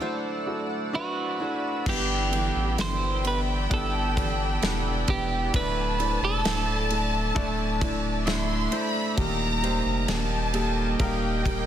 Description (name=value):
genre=pop ballad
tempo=66 BPM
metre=4/4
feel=straight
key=G major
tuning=A4 = 436 Hz
part: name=twelve-string electric guitar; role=melody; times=0.0-8.7 s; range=F#4 to D5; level=-30 LUFS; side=right 4 dB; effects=spring reverb, ping-pong delay
part: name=dark grand piano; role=accompaniment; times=0.0-11.7 s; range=G2 to E5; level=-31 LUFS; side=left 1 dB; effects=none
part: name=shimmering ambient pad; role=sustained chords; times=0.0-11.7 s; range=Bb3 to F6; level=-35 LUFS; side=equal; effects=chorus, built-in reverb
part: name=picked steel-string acoustic guitar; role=arpeggios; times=0.0-11.7 s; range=G2 to G4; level=-35 LUFS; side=right 4 dB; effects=none
part: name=warm studio violin section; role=second line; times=1.9-11.7 s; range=G5 to C6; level=-32 LUFS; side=left 1 dB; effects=none
part: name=saturated sub bass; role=bass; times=1.9-11.7 s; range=D1 to A1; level=-29 LUFS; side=equal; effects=none
part: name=modern studio drum kit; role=drums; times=1.9-11.7 s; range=crash cymbal, kick drum, ride cymbal, snare drum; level=-30 LUFS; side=equal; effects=none
room=light reverb, small room ambience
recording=dense, heavily limited modern master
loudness=-24 LUFS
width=side -10 dB against mid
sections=0.0-1.9 A section; 1.9-11.7 B section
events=break 0.0-1.9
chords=0.0 Dadd9; 1.9 G6; 5.5 Dsus2; 9.2 Eb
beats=0.01 0.93 | 1.86 2.79 3.71 4.63 | 5.54 6.46 7.37 8.27 | 9.18 10.09 11.00